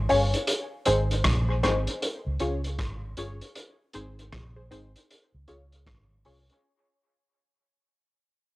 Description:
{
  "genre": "dub reggae",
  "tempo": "78 BPM",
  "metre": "4/4",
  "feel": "swing 62% on 16ths",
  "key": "unclear",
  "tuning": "A4 = 440 Hz",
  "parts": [
    { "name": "vintage muted fingered electric bass", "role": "bass", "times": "0.0-6.5 s", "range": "G1 to Db2", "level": "-28 LUFS", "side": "equal", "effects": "none" },
    { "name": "filtered dub chord stab", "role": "stabs", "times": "0.1-6.5 s", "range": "C4 to Db5", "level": "-27 LUFS", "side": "left 1 dB", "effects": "phaser, cassette tape, dub echo, plate reverb" },
    { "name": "crunchy breakbeat drum kit", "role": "drums", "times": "0.1-6.6 s", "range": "hi-hat, kick drum, rim click", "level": "-29 LUFS", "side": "equal", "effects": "cassette tape" }
  ],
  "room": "light reverb",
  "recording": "home recording on cassette",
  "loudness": "-24 LUFS",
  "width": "side -19 dB against mid",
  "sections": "0.0-6.6 A section",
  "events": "fade-out 0.0-6.6",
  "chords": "0.5 Ab; 2.0 Db; 3.6 Ab; 5.1 Db"
}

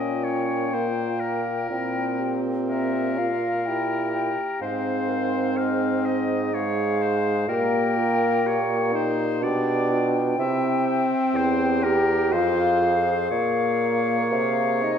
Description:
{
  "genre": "classical, slow romantic movement for wind quintet",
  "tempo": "62 BPM",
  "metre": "3/4",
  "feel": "rubato",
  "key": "F minor",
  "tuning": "A4 = 441 Hz",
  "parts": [
    { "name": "silver concert flute", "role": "melody", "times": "0.0-15.0 s", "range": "Eb5 to G5", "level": "-28 LUFS", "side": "left 6 dB", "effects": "none" },
    { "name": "bright oboe", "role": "second line", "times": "0.0-15.0 s", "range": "Bb4 to F5", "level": "-30 LUFS", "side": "left 2 dB", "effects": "none" },
    { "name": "clear French horn", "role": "accompaniment", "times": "0.0-15.0 s", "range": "Ab3 to G4", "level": "-25 LUFS", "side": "equal", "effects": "none" },
    { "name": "dark clarinet", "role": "accompaniment", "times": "0.0-15.0 s", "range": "E4 to Bb4", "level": "-32 LUFS", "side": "right 4 dB", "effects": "none" },
    { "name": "mellow bassoon", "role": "bass", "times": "0.0-15.0 s", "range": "E2 to C3", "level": "-27 LUFS", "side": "right 2 dB", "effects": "none" }
  ],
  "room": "wet recital hall reverb, RT60 1.7 s",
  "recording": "minimal, uncompressed stereo recording",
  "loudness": "-21 LUFS",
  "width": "side -8 dB against mid",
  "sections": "0.0-15.0 A section",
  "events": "none",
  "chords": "0.0 Gdim/Bb; 1.7 C7/Bb; 4.6 Fm/Ab; 7.5 Gdim/Bb; 9.4 G7/B; 10.4 C7; 12.3 Fm; 13.3 Bbm; 14.3 Fm/C"
}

